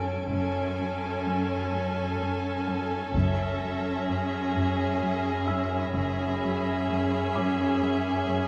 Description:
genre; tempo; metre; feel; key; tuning
cinematic, suspense film score; 64 BPM; 3/4; straight; unclear; A4 = 440 Hz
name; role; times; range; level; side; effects
rich chamber violin section; melody; 0.0-8.5 s; E5 to G#5; -40 LUFS; equal; none
rich chamber violin section; second line; 0.0-8.5 s; G#4 to A4; -37 LUFS; equal; none
rich chamber viola section; accompaniment; 0.0-8.5 s; C#4; -33 LUFS; equal; none
glass harmonica; sustained chords; 0.0-8.5 s; C#4 to G#5; -38 LUFS; equal; none
rich chamber cello section; riff; 0.0-8.5 s; F#2 to F#3; -37 LUFS; equal; none
rich symphonic cello section; bass; 0.0-8.5 s; F#2; -35 LUFS; equal; none
felt-muted upright piano; texture; 0.0-8.5 s; C#5 to C#7; -44 LUFS; equal; none
rich chamber violin section; texture; 0.0-8.2 s; C#5 to D7; -43 LUFS; equal; none
warm studio double bass section; bass; 0.3-6.8 s; F#1; -37 LUFS; equal; none
solo taiko drums; drums; 3.1-5.0 s; none; -36 LUFS; equal; none
room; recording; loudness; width
wet cathedral reverb, RT60 6.2 s; in a vast, echoing space; -28 LUFS; mono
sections
0.0-8.5 A section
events
none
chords
0.0 F#madd9; 3.1 C#m/F#

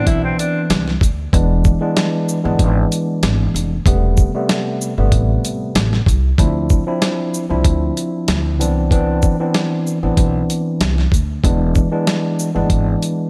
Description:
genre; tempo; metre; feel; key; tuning
hip hop, boom-bap hip-hop; 95 BPM; 4/4; swing 54% on 16ths; D dorian; A4 = 440 Hz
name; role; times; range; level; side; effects
breathy tenor saxophone; melody; 0.0-0.7 s; C4 to E4; -25 LUFS; equal; high-pass filter, low-pass filter, digital delay
tine electric piano; accompaniment; 0.0-13.3 s; C3 to E4; -21 LUFS; equal; cassette tape, high-pass filter, low-pass filter
upright bass; bass; 0.0-12.9 s; E1 to D2; -20 LUFS; equal; none
dusty soul sampler-style drum kit; drums; 0.1-13.2 s; hi-hat, kick drum, shaker, snare drum; -19 LUFS; equal; none
room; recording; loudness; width
light reverb; none; -17 LUFS; mono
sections
0.0-6.4 A section; 6.4-13.3 B section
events
none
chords
0.0 Cmaj9; 1.3 E7; 3.9 Am9/E; 6.4 Dm9; 8.6 Cmaj9; 11.4 E7

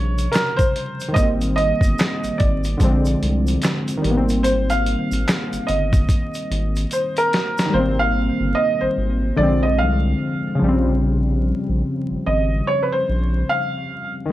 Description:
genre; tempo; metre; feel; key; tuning
lo-fi hip hop; 73 BPM; 4/4; swing 61% on 16ths; Ab major; A4 = 441 Hz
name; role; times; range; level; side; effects
felt-muted upright piano; melody; 0.0-14.1 s; Bb4 to F5; -22 LUFS; right 1 dB; low-pass filter
warm analog keys; accompaniment; 0.0-14.3 s; C3 to C4; -22 LUFS; left 1 dB; chorus, cassette tape, low-pass filter
saturated sub bass; bass; 0.0-13.4 s; G1 to C2; -21 LUFS; equal; none
dusty soul sampler-style drum kit; drums; 0.2-7.7 s; handclaps, hi-hat, kick drum, snare drum; -21 LUFS; equal; none
tube shaker; percussion; 0.2-7.7 s; none; -39 LUFS; right 5 dB; none
room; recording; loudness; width
light reverb; vinyl crackle; -17 LUFS; side -14 dB against mid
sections
0.0-7.7 A section; 7.7-14.3 B section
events
drum fill 6.9-7.7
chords
0.0 Eb13; 1.2 Abmaj9; 2.8 Bb7; 4.0 Abmaj9; 9.4 Bb7; 10.6 Bbm69

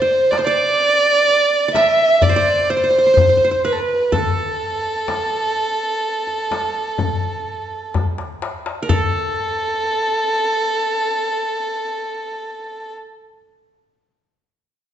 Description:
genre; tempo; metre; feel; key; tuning
Turkish makam ensemble; 126 BPM (eighths); 10/8; straight; A makam ussak; A4 = 441 Hz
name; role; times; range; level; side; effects
dark violin; melody; 0.0-12.9 s; A4 to E5; -17 LUFS; right 1 dB; none
qanun; second line; 0.0-12.9 s; A4 to E5; -24 LUFS; right 2 dB; none
darbuka; percussion; 0.3-9.3 s; none; -25 LUFS; left 4 dB; none
frame drum; percussion; 0.3-9.3 s; none; -25 LUFS; left 3 dB; none
room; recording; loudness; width
wet recital hall reverb, RT60 1.4 s; nothing above 8.0 kHz; -16 LUFS; side -10 dB against mid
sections
0.0-8.9 A section; 8.9-13.7 B section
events
drum fill 7.9-8.9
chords
none

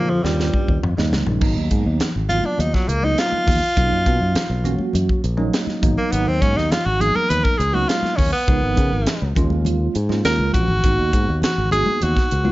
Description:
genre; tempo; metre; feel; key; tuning
electric jazz fusion; 102 BPM; 4/4; straight; G# dorian; A4 = 440 Hz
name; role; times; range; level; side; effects
bright tenor saxophone; melody; 0.0-12.5 s; F3 to B4; -21 LUFS; equal; none
breathy trombone; second line; 0.0-0.8 s; F2 to Bb2; -29 LUFS; left 5 dB; none
bell-like tine electric piano; accompaniment; 0.0-12.5 s; E#3 to A#4; -25 LUFS; right 3 dB; fast stereo tremolo, phaser
fingered electric bass; bass; 0.0-12.5 s; G#1 to F3; -21 LUFS; equal; none
crisp fusion drum kit; drums; 0.2-12.4 s; crash cymbal, hi-hat, kick drum, snare drum, toms; -22 LUFS; equal; none
congas; percussion; 0.5-12.5 s; none; -28 LUFS; left 2 dB; none
room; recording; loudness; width
studio reverb; nothing above 7.6 kHz; -16 LUFS; side -18 dB against mid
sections
0.0-1.4 A section; 1.4-12.5 B section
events
drum fill 0.0-1.4, 10.2-10.8; tenor saxophone solo 1.4-12.5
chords
0.2 Eb7; 1.4 G#m9; 3.8 Bmaj9; 5.8 G#m9; 8.5 C#13; 9.4 D#7sus4; 10.8 G#m9

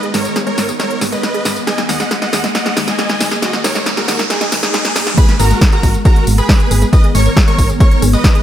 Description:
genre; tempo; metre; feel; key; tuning
uplifting trance; 137 BPM; 4/4; straight; G# minor; A4 = 435 Hz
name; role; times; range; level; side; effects
supersaw chords; melody; 0.0-8.4 s; D#4 to G#5; -20 LUFS; right 1 dB; sidechain pumping, tape echo
shimmering ambient pad; sustained chords; 0.0-8.4 s; D#3 to B3; -22 LUFS; left 1 dB; chorus, built-in reverb, sidechain pumping
wide unison pluck; arpeggios; 0.0-8.4 s; G#3 to G#4; -24 LUFS; right 2 dB; sidechain pumping, tape echo
big-room dance drum kit; drums; 0.0-8.4 s; crash cymbal, hi-hat, snare drum, tambourine; -17 LUFS; equal; none
riser; sound effects; 0.1-5.2 s; none; -25 LUFS; right 1 dB; none
solid FM bass; bass; 0.1-8.2 s; G#1 to D#2; -16 LUFS; equal; sidechain pumping
plucky unison lead; second line; 5.2-8.4 s; A#5 to D#6; -22 LUFS; right 1 dB; sidechain pumping, tape echo
electronic kick drum; drums; 5.2-8.3 s; none; -10 LUFS; equal; none
room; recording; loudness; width
light reverb, digital ambience; high-pass filter; -11 LUFS; side -11 dB against mid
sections
0.0-5.2 A section; 5.2-8.4 B section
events
build-up 0.0-5.2; drum fill 0.0-5.2; filter sweep on synth arpeggio sound 0.0-5.2; filter sweep 0.0-5.2; riser 0.1-5.2; drop 5.2-8.4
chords
0.0 G#m; 1.7 D#sus4; 5.2 G#m

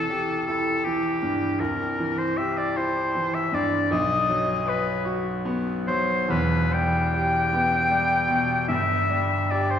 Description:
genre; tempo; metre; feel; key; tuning
classical, romantic duo for oboe and grand piano; 51 BPM (dotted quarters); 6/8; uneven beats, rubato; E minor; A4 = 440 Hz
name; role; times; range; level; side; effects
clear oboe; melody; 0.0-9.8 s; G4 to G5; -24 LUFS; left 2 dB; none
bright grand piano; accompaniment; 0.0-9.8 s; E1 to B4; -25 LUFS; equal; none
room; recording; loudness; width
wet concert hall reverb, RT60 2.3 s; heard from further back in the room, vinyl crackle, small room ambience; -21 LUFS; side -8 dB against mid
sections
0.0-9.8 A section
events
none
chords
0.0 C; 3.9 B; 6.3 Em; 8.7 Em/G

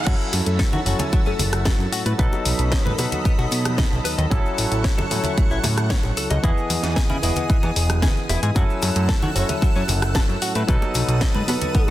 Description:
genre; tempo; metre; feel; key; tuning
nu-disco, nu disco; 113 BPM; 4/4; straight; F# dorian; A4 = 441 Hz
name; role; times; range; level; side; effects
barky tine electric piano; accompaniment; 0.0-11.9 s; E3 to D#5; -27 LUFS; equal; medium stereo tremolo, vintage 12-bit sampler grit, sidechain pumping, tape echo
lush unison pad; sustained chords; 0.0-11.9 s; F#4 to E6; -31 LUFS; right 1 dB; chorus, sidechain pumping
direct-recorded clean electric guitar; riff; 0.1-11.8 s; E3 to D#5; -31 LUFS; left 4 dB; analog chorus, tape echo
fat analog bass; bass; 0.1-11.9 s; E1 to D#3; -23 LUFS; equal; none
electronic kick drum; drums; 0.1-11.9 s; none; -20 LUFS; equal; none
house drum kit; drums; 0.1-11.9 s; crash cymbal, hi-hat, rim click, snare drum; -26 LUFS; left 2 dB; low-pass filter on snare, low-pass filter on hats, low-pass filter on cymbals, low-pass filter on room
maracas, bongos and congas; percussion; 0.1-11.9 s; none; -31 LUFS; right 3 dB; none
soft octave-layered synth lead; melody; 0.5-3.0, 9.0-11.9 s; A4 to E5; -32 LUFS; left 1 dB; chorus, phaser, tape echo
room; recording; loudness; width
light reverb, digital ambience; dense, heavily limited modern master; -18 LUFS; side -14 dB against mid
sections
0.1-11.9 A section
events
drop 0.1-11.9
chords
0.1 F#m7; 2.2 B7; 4.3 A6; 6.4 Emaj7; 8.6 F#m7; 10.7 B7

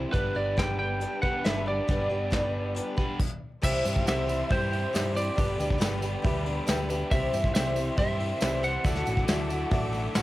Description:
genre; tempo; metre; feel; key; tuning
folk rock and heartland rock; 138 BPM; 4/4; straight; unclear; A4 = 440 Hz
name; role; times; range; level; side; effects
picked steel-string acoustic guitar; accompaniment; 0.0-10.2 s; C3 to C5; -34 LUFS; left 2 dB; cassette tape
overdriven electric guitar; riff; 0.0-10.2 s; G2 to C5; -35 LUFS; equal; cassette tape
picked electric bass; bass; 0.0-10.2 s; G1 to G2; -32 LUFS; equal; tube saturation
lightly driven lead guitar; melody; 0.1-9.3 s; B4 to G5; -31 LUFS; right 1 dB; cassette tape
muted studio string section; sustained chords; 0.1-10.2 s; G3 to D6; -40 LUFS; left 2 dB; cassette tape
soft brush drum kit; drums; 0.1-10.2 s; crash cymbal, hi-hat, kick drum, snare drum; -29 LUFS; equal; cassette tape
clear upright piano; accompaniment; 3.6-10.2 s; F#4 to B5; -36 LUFS; right 1 dB; cassette tape
tambourine; percussion; 3.6-10.2 s; none; -44 LUFS; right 6 dB; none
room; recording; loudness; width
light reverb, small room ambience; home recording on cassette; -25 LUFS; side -16 dB against mid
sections
0.0-3.6 A section; 3.6-10.2 B section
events
upright piano fill 6.2-7.1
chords
0.1 G; 3.6 C; 5.4 G; 7.1 C; 8.9 Dadd9

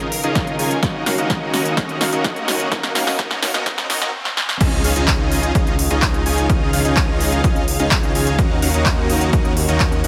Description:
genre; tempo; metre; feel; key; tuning
EDM, festival progressive house; 127 BPM; 4/4; straight; Db major; A4 = 440 Hz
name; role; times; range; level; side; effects
dark studio string section; sustained chords; 0.0-10.1 s; Db3 to F5; -28 LUFS; equal; sidechain pumping
dense compressed supersaw; riff; 0.0-10.1 s; Db4 to Ab5; -24 LUFS; equal; cassette tape, sidechain pumping, low-pass filter, delay
detuned saw bass; bass; 0.0-10.1 s; Db2 to Eb2; -26 LUFS; equal; chorus, sidechain pumping, high-pass filter
big-room dance drum kit; drums; 0.0-10.1 s; crash cymbal, handclaps, hi-hat, snare drum; -24 LUFS; equal; overdrive
riser and impact; sound effects; 0.2-6.5 s; none; -34 LUFS; equal; none
electronic kick drum; drums; 0.4-9.9 s; none; -22 LUFS; equal; overdrive
room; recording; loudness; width
light reverb; high-pass filter; -18 LUFS; mono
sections
0.0-4.6 A section; 4.6-10.1 B section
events
build-up 0.0-4.6; drum fill 0.0-4.1, 4.3-4.6; filter sweep 0.0-4.6; drop 4.6-10.1; impact 4.6-6.5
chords
0.0 Dbadd9; 0.8 Ebm7; 4.6 Dbadd9; 8.4 Ebm7

